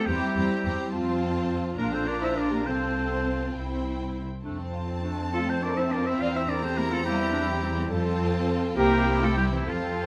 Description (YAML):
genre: quick classical-period movement for symphony orchestra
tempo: 69 BPM (dotted quarters)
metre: 6/8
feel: rubato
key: F major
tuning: A4 = 439 Hz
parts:
  - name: rich studio violin section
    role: melody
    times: 0.0-10.1 s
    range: G5 to Bb5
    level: -42 LUFS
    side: equal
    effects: none
  - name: clear oboe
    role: second line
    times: 0.0-10.1 s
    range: E4 to F5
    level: -33 LUFS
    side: equal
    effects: none
  - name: mellow clarinet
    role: second line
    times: 0.0-10.1 s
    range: C4 to A4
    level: -35 LUFS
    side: equal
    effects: none
  - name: rich studio violin section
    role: second line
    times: 0.0-10.1 s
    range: A3 to G4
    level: -39 LUFS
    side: equal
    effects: none
  - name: rich studio viola section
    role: accompaniment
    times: 0.0-10.1 s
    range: C4 to D4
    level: -36 LUFS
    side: equal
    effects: none
  - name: rich studio cello section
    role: bass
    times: 0.0-10.1 s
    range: E3 to F4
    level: -34 LUFS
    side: equal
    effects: none
  - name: flute section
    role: second line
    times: 0.1-10.1 s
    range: C4 to D5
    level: -34 LUFS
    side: equal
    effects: none
  - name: rich studio double bass section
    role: bass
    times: 0.1-10.1 s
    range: Bb1 to F2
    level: -33 LUFS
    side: equal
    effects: none
room: moderate scoring stage reverb, RT60 1.9 s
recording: none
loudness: -27 LUFS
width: mono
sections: 0.0-10.1 A section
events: none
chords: 0.0 C7/E; 0.9 F; 1.8 Bb; 2.7 F/C; 4.5 F; 6.2 C7/E; 7.9 F; 8.8 C